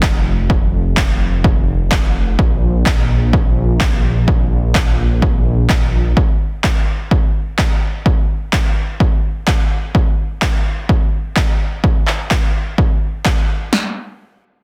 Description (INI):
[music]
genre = EDM, festival progressive house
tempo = 127 BPM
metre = 4/4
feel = straight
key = unclear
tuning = A4 = 443 Hz
[part]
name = detuned saw bass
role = bass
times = 0.0-6.1 s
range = F1 to Bb1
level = -18 LUFS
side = equal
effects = chorus, sidechain pumping
[part]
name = big-room dance drum kit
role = drums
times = 0.0-13.8 s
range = kick drum, snare drum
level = -17 LUFS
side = equal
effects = overdrive
[part]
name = electronic handclaps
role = drums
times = 0.0-13.3 s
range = none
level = -24 LUFS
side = equal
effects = overdrive
[sound]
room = little or no reverb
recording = dense, heavily limited modern master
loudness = -16 LUFS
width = mono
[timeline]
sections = 0.0-13.7 A section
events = none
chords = none